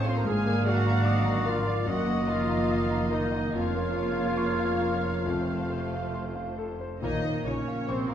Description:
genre	classical, romantic movement for piano and orchestra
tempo	67-75 BPM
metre	4/4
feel	rubato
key	Bb minor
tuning	A4 = 441 Hz
part	clear concert grand piano	melody	0.0-8.1 s	F2 to Eb6	-32 LUFS	left 2 dB	none
part	muted chamber violin section	melody	0.0-8.0 s	C5 to F5	-42 LUFS	left 5 dB	none
part	muted studio violin section	second line	0.0-8.1 s	Bb4 to C6	-38 LUFS	left 4 dB	none
part	warm clarinet	second line	0.0-8.1 s	Bb3 to C5	-38 LUFS	left 3 dB	none
part	warm oboe	second line	0.0-6.5 s	C5 to F5	-37 LUFS	right 1 dB	none
part	muted chamber viola section	accompaniment	0.0-8.0 s	A3 to A4	-36 LUFS	equal	none
part	warm bassoon	accompaniment	0.0-7.3 s	A3 to Bb3	-39 LUFS	left 1 dB	none
part	dark French horn section	sustained chords	0.0-8.1 s	Bb3 to C5	-38 LUFS	left 6 dB	none
part	warm trombone section	sustained chords	0.0-8.1 s	C3 to Bb3	-35 LUFS	right 3 dB	none
part	dark trumpet section	stabs	0.0-8.1 s	Bb3 to C5	-35 LUFS	right 2 dB	none
part	muted chamber cello section	bass	0.0-8.1 s	Bb2 to C4	-36 LUFS	right 3 dB	none
part	muted chamber double bass section	bass	0.0-8.0 s	F1 to Bb1	-32 LUFS	right 2 dB	none
part	mellow small flute group	second line	0.3-7.4 s	C5 to Eb5	-40 LUFS	right 2 dB	none
room	wet recital hall reverb, RT60 1.4 s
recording	heard from further back in the room, nothing above 10.4 kHz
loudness	-25 LUFS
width	side -10 dB against mid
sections	0.0-8.1 A section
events	none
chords	0.3 Bb7/Ab; 1.9 Ebm/Gb; 3.5 Bbm/F; 5.3 F; 7.0 Bbm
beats	| 0.26 1.07 1.88 2.70 | 3.54 4.38 5.26 6.14 | 7.03 7.88

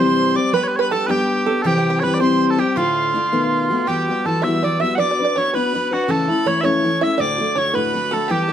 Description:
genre	celtic folk, Celtic jig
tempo	108 BPM (dotted quarters)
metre	6/8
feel	straight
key	E dorian from 3.9 s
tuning	A4 = 440 Hz
part	mellow small bagpipes	melody	0.0-8.5 s	F4 to F#5	-20 LUFS	right 3 dB	tape echo
part	bright reedy tin whistle	second line	0.0-8.5 s	F5 to E6	-28 LUFS	left 3 dB	none
part	open-back banjo	second line	0.0-8.5 s	F4 to E5	-25 LUFS	right 6 dB	none
part	picked steel-string acoustic guitar	accompaniment	0.0-8.5 s	D2 to B4	-19 LUFS	left 3 dB	none
room	wet studio reverb, RT60 0.7 s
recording	none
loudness	-16 LUFS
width	side -9 dB against mid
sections	0.0-3.9 A section; 3.9-8.5 B section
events	none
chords	0.0 C; 0.5 G; 1.6 C; 2.8 Dm; 3.3 B7; 3.9 Emadd9; 5.0 Bm; 6.1 A/C#; 7.2 D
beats	| 0.54 1.09 | 1.65 2.21 | 2.76 3.32 | 3.87 4.42 | 4.98 5.53 | 6.08 6.64 | 7.19 7.74 | 8.29

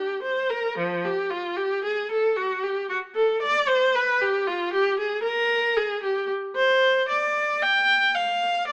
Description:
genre	classical, baroque-style suite movement for unaccompanied viola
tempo	114 BPM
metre	3/4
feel	rubato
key	unclear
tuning	A4 = 444 Hz
part	rich viola	solo	0.0-8.7 s	F3 to G5	-24 LUFS	equal	none
room	moderate stone room reverb, RT60 1.1 s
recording	none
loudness	-23 LUFS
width	mono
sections	0.8-8.7 A section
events	none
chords	none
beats	0.23 | 0.79 1.32 1.84 | 2.37 2.90 3.42 | 3.95 4.47 4.99 | 5.51 6.03 6.56 | 7.08 7.61 8.14 | 8.67

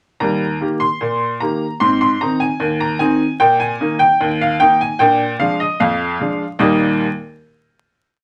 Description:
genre	ragtime piano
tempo	75 BPM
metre	2/4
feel	straight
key	Eb major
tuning	A4 = 440 Hz
part	bright upright piano	solo	0.2-7.0 s	Eb2 to C6	-16 LUFS	equal	none
room	wet studio ambience, RT60 0.5 s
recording	vinyl crackle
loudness	-17 LUFS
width	mono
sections	0.2-6.6 A section; 6.6-8.2 final chord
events	none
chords	0.2 Eb; 1.8 Ab; 3.4 Eb5/Bb; 5.0 Bb7; 6.6 Eb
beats	| 0.21 1.01 | 1.81 2.61 | 3.40 4.20 | 5.00 5.80 | 6.60

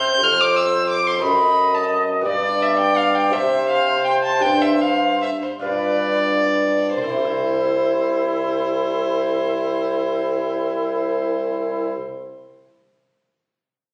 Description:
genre	classical, baroque-style sonata movement with continuo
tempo	44-60 BPM (dotted quarters)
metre	6/8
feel	rubato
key	C major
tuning	A4 = 444 Hz
part	mellow trumpet	melody	0.0-11.9 s	E4 to D#5	-26 LUFS	equal	none
part	warm violin	second line	0.0-11.9 s	C5 to G6	-23 LUFS	equal	none
part	lute	accompaniment	0.0-12.2 s	F2 to E5	-28 LUFS	equal	none
part	mellow bassoon	bass	0.0-11.9 s	C2 to C3	-27 LUFS	equal	none
room	wet recital hall reverb, RT60 1.5 s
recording	recorded on a phone in the room, club reverb, compression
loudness	-19 LUFS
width	mono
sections	0.0-7.0 A section; 7.0-12.3 B section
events	slowing down 1.2-7.0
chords	0.2 F; 1.2 F#dim7; 2.3 G; 3.3 C5; 4.4 Gsus4; 5.6 G7; 7.0 C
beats	| 0.23 1.24 | 2.27 3.33 | 4.44 5.64 | 6.97 8.30 | 9.63 10.97

